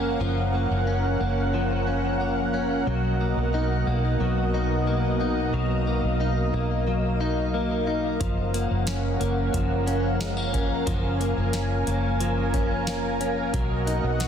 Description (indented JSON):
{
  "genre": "dream pop",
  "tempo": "90 BPM",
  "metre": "4/4",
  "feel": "straight",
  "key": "F# major",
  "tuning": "A4 = 440 Hz",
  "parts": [
    { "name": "lush unison pad", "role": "sustained chords", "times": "0.0-14.3 s", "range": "B2 to G#5", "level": "-28 LUFS", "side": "right 2 dB", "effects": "chorus, shimmer reverb" },
    { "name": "direct-recorded clean electric guitar", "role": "arpeggios", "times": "0.0-14.3 s", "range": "E#3 to F#4", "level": "-28 LUFS", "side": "left 4 dB", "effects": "analog chorus, ping-pong delay, shimmer reverb" },
    { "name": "vintage muted fingered electric bass", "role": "bass", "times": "0.0-14.3 s", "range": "F#1 to B1", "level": "-27 LUFS", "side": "right 1 dB", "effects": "none" },
    { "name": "booming analog drum machine", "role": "drums", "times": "8.2-14.3 s", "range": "hi-hat, kick drum, snare drum", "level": "-29 LUFS", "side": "equal", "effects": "none" }
  ],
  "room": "moderate recital hall reverb, RT60 1.5 s, digital ambience",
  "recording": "dense, heavily limited modern master",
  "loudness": "-22 LUFS",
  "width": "side -8 dB against mid",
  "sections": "0.0-14.3 A section",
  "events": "none",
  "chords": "0.0 F#maj7; 2.9 Bmaj7; 8.2 F#maj7; 13.5 Bmaj7"
}